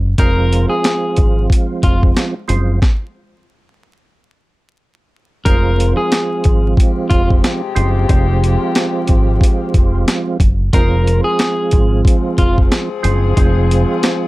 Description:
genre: hip hop, boom-bap hip-hop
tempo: 91 BPM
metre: 4/4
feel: swing 62% on 16ths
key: F minor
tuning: A4 = 439 Hz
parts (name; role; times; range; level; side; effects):
- deep dub fingered electric bass; bass; 0.0-13.8 s; F1 to Ab1; -15 LUFS; equal; none
- electric guitar at the edge of break-up; melody; 0.2-12.6 s; F4 to Bb4; -19 LUFS; left 1 dB; high-pass filter, low-pass filter, slapback echo, plate reverb
- percussive tonewheel organ; accompaniment; 0.2-14.3 s; F3 to F4; -20 LUFS; right 3 dB; chorus vibrato, slow rotary speaker, cassette tape, high-pass filter, low-pass filter, plate reverb
- boom bap sampler-style drum kit; drums; 0.2-14.2 s; hi-hat, kick drum, snare drum; -13 LUFS; equal; none
- warm saxophone section; stabs; 6.8-14.3 s; C3 to Ab4; -23 LUFS; left 8 dB; high-pass filter, low-pass filter, slapback echo, plate reverb
room: light reverb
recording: vinyl crackle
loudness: -12 LUFS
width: side -19 dB against mid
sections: 0.0-5.5 A section; 5.5-14.3 B section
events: stop 2.8-5.5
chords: 0.0 Fm

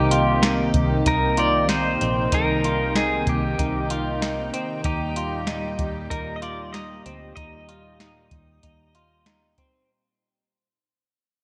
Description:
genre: dream pop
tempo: 95 BPM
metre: 4/4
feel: straight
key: Eb major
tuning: A4 = 439 Hz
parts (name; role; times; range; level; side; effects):
- pedal steel guitar; melody; 0.0-9.2 s; G4 to Eb5; -28 LUFS; equal; subtle chorus, digital delay
- lush unison pad; sustained chords; 0.0-9.9 s; Bb2 to G5; -29 LUFS; equal; chorus
- semi-hollow electric guitar; arpeggios; 0.0-9.9 s; C4 to F4; -31 LUFS; equal; lush chorus, digital delay
- vintage muted fingered electric bass; bass; 0.0-9.5 s; Bb1 to Eb2; -30 LUFS; equal; none
- soft vintage rhythm box; drums; 0.1-9.7 s; hi-hat, kick drum, snare drum; -29 LUFS; equal; gated reverb
room: moderate plate reverb, RT60 2.9 s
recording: bright 1980s-style digital production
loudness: -23 LUFS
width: mono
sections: 0.0-9.9 A section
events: fade-out 0.0-9.9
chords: 0.0 Cm7; 4.8 Eb

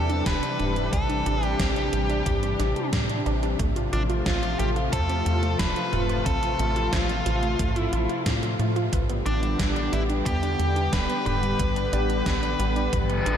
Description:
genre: synthwave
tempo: 90 BPM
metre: 4/4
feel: straight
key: unclear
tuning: A4 = 442 Hz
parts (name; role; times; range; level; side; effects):
- nasal lead guitar with a parked wah; melody; 0.0-13.4 s; D4 to B4; -29 LUFS; left 1 dB; overdrive, ping-pong delay
- warm analog pad; sustained chords; 0.0-13.4 s; C3 to G4; -29 LUFS; left 1 dB; chorus, sidechain pumping
- wide unison pluck; arpeggios; 0.0-13.4 s; G3 to C5; -33 LUFS; right 2 dB; ping-pong delay
- tight sequencer bass; bass; 0.0-13.4 s; E1 to A2; -27 LUFS; equal; tube saturation
- gated 80s digital drum machine; drums; 0.1-13.4 s; hi-hat, snare drum, toms; -31 LUFS; right 1 dB; gated reverb, gated reverb snare, overdrive
- electronic kick drum; drums; 0.3-13.1 s; none; -28 LUFS; equal; overdrive
- reverse cymbal; sound effects; 13.1-13.4 s; none; -28 LUFS; left 2 dB; none
room: moderate huge ambient reverb, RT60 8.8 s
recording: dreamy mix soaked in reverb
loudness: -22 LUFS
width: side -9 dB against mid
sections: 0.0-13.4 A section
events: drum fill 12.9-13.4; reverse cymbal 13.1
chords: 0.0 Cadd9; 3.6 F; 8.9 G

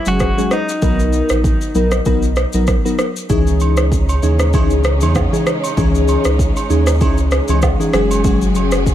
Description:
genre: afrobeats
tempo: 97 BPM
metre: 4/4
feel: swing 55% on 16ths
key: C# dorian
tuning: A4 = 440 Hz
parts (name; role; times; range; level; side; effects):
- direct-recorded clean electric guitar; melody; 0.0-2.6 s; D#4 to F#4; -23 LUFS; left 1 dB; harmonic tremolo, ping-pong delay
- glassy digital keys; accompaniment; 0.1-8.8 s; E3 to A#4; -18 LUFS; left 2 dB; chorus
- round analog bass; bass; 0.1-8.9 s; F#1 to E2; -17 LUFS; equal; none
- afro-pop drum kit; drums; 0.1-8.9 s; kick drum, rim click, shaker; -18 LUFS; equal; overdrive
- warm studio string section; sustained chords; 3.3-8.9 s; C#3 to G#4; -24 LUFS; right 2 dB; none
- agogo bells and woodblock; percussion; 3.6-8.7 s; none; -27 LUFS; right 6 dB; none
room: digital ambience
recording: none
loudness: -13 LUFS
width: side -11 dB against mid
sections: 0.0-3.3 A section; 3.3-8.9 B section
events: none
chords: 0.0 F#sus2; 0.8 Bmaj7; 3.3 C#madd9; 7.9 F#sus2

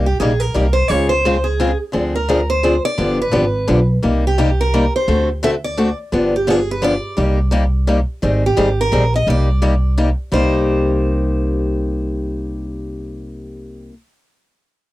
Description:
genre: acoustic string swing (jazz manouche)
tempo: 172 BPM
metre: 3/4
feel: swing 60% on 8ths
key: C minor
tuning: A4 = 440 Hz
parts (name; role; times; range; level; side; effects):
- picked steel-string acoustic guitar; accompaniment; 0.0-13.9 s; C3 to A4; -18 LUFS; left 2 dB; none
- upright bass; bass; 0.0-13.9 s; G1 to D2; -19 LUFS; equal; none
- picked steel-string acoustic guitar; melody; 0.1-13.9 s; G4 to E5; -20 LUFS; right 2 dB; none
room: little or no reverb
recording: dry, close 1970s-style studio recording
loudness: -14 LUFS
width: side -16 dB against mid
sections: 0.0-8.2 A section; 8.2-10.3 B section; 10.3-12.4 C section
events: none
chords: 0.0 Cm7; 0.9 Dbmaj7; 1.9 Dm7b5; 3.0 G7; 4.0 Cm7; 5.1 D7; 6.1 G7; 7.2 Cm7; 8.2 Abmaj9; 9.3 Cm7

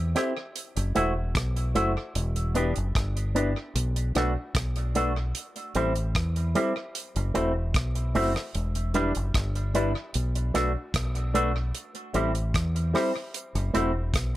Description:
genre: roots reggae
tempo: 75 BPM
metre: 4/4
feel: straight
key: E minor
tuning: A4 = 440 Hz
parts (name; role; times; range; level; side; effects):
- deep dub fingered electric bass; bass; 0.0-14.4 s; E1 to E2; -27 LUFS; equal; none
- dark upright piano; stabs; 0.1-13.9 s; D4 to C5; -32 LUFS; left 5 dB; none
- electric guitar with an envelope filter; accompaniment; 0.2-13.9 s; G3 to G4; -29 LUFS; right 3 dB; tape echo
- damped 70s drum kit; drums; 0.2-14.3 s; hi-hat, kick drum, rim click; -31 LUFS; equal; tape echo
room: light reverb, studio ambience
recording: none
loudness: -25 LUFS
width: side -15 dB against mid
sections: 0.0-8.5 A section; 8.5-14.4 A section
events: none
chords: 0.0 Am7; 0.6 F#m7b5; 2.2 Em7; 3.8 Bm7; 5.3 Am7; 6.9 F#m7b5; 8.5 Em7; 10.1 Bm7; 11.7 Am7; 13.3 F#m7b5

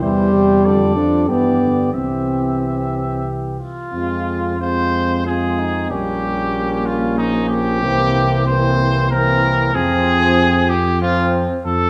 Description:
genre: classical, brass quintet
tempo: 94 BPM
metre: 3/4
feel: straight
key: C major, F minor from 3.9 s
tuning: A4 = 440 Hz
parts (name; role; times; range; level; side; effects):
- bright trumpet; melody; 0.0-11.9 s; Eb4 to E5; -23 LUFS; equal; none
- mellow flugelhorn; second line; 0.0-11.6 s; C4 to A4; -27 LUFS; equal; none
- bright trombone; accompaniment; 0.0-11.6 s; C3 to Ab3; -28 LUFS; equal; none
- warm French horn; accompaniment; 0.0-11.6 s; G3 to D4; -22 LUFS; equal; none
- dark tuba; bass; 0.0-11.9 s; Bb1 to G2; -23 LUFS; equal; none
room: wet recital hall reverb, RT60 1.9 s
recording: none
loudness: -17 LUFS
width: mono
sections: 0.0-3.9 A section; 3.9-11.9 B section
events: none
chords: 0.0 C/E; 0.7 Dm/F; 1.3 G; 1.9 C; 3.9 Fm; 5.9 Gdim/Bb; 7.8 C7; 9.8 Fm

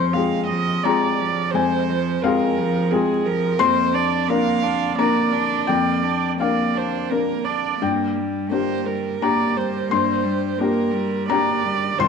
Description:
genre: neoclassical piano and strings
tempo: 86 BPM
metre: 3/4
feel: rubato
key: unclear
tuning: A4 = 441 Hz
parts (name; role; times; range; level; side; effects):
- rich cello; second line; 0.0-12.1 s; Eb3 to D4; -25 LUFS; right 6 dB; slapback echo
- felt-muted upright piano; accompaniment; 0.0-12.1 s; C2 to C6; -21 LUFS; left 7 dB; none
- warm viola; accompaniment; 0.0-12.1 s; Ab4 to F5; -24 LUFS; right 10 dB; none
room: wet spring reverb, RT60 1.3 s, small room ambience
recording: 1960s-style stereo with parts hard left and right, vinyl crackle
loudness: -18 LUFS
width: side -6 dB against mid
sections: 0.0-12.1 A section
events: none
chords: 0.0 Fm; 3.6 Bb/F; 7.8 Gm

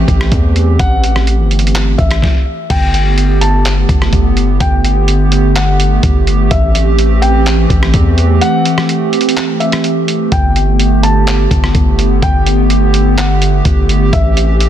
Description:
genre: hip hop, atmospheric cloud-rap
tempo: 126 BPM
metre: 4/4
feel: half-time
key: G major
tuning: A4 = 441 Hz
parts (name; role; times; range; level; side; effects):
- felt-muted upright piano; melody; 0.0-14.7 s; E5 to A5; -20 LUFS; left 3 dB; digital delay
- hollow soft pad; sustained chords; 0.0-14.7 s; D3 to G4; -15 LUFS; right 2 dB; chorus, sidechain pumping
- long sustained 808-style bass; bass; 0.0-14.7 s; G1 to E2; -12 LUFS; equal; none
- lo-fi sampler-style drum kit; drums; 0.1-14.7 s; crash cymbal, handclaps, hi-hat, kick drum, rim click, snare drum; -15 LUFS; equal; soft clipping on snare
room: little or no reverb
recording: dense, heavily limited modern master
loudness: -9 LUFS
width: side -10 dB against mid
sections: 0.0-2.7 A section; 2.7-14.7 B section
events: stop 2.2-2.7; break 8.4-10.3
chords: 0.0 Am7; 2.7 Gadd9; 6.5 Am7; 10.3 Gadd9; 14.1 Am7

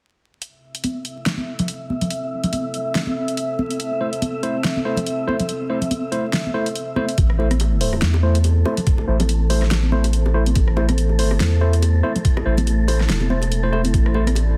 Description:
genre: deep dubstep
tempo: 142 BPM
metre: 4/4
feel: swing 56% on 16ths, half-time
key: A minor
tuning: A4 = 441 Hz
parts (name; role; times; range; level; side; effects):
- dark analog pad; sustained chords; 1.1-14.6 s; A3 to E5; -30 LUFS; equal; chorus
- deep house drum kit; drums; 0.4-14.5 s; hi-hat, rim click, snare drum; -28 LUFS; equal; overdrive, studio reverb
- wind-like tuned noise texture; texture; 0.9-14.6 s; A4 to E5; -35 LUFS; equal; built-in reverb
- congas and bongos; percussion; 0.8-14.5 s; none; -29 LUFS; equal; dub echo
- barky tine electric piano; stabs; 4.0-14.2 s; A3 to C5; -28 LUFS; equal; low-pass filter, dub echo
- saturated sub bass; bass; 7.2-14.6 s; E1 to E2; -20 LUFS; equal; none
- electronic kick drum; drums; 7.2-14.0 s; none; -20 LUFS; equal; studio reverb
room: light reverb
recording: dense, heavily limited modern master, vinyl crackle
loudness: -20 LUFS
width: mono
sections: 0.4-7.2 A section; 7.2-14.6 B section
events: filter sweep on tine electric piano 7.2-14.6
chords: 0.4 Am

